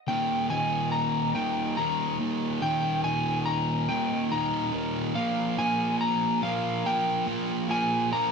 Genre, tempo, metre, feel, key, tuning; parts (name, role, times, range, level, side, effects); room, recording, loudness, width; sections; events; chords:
rock; 47 BPM (dotted quarters); 6/8; straight; Eb major; A4 = 440 Hz
electric slide guitar; melody; 0.1-8.3 s; F5 to Bb5; -28 LUFS; left 1 dB; slapback echo
thick fuzz guitar; riff; 0.1-8.3 s; Eb2 to Bb3; -27 LUFS; right 1 dB; distortion
moderate huge ambient reverb, RT60 6.2 s; -25 LUFS; side -5 dB against mid
0.1-8.3 A section
build-up 0.1-8.3
0.1 Eb5; 5.2 Bb5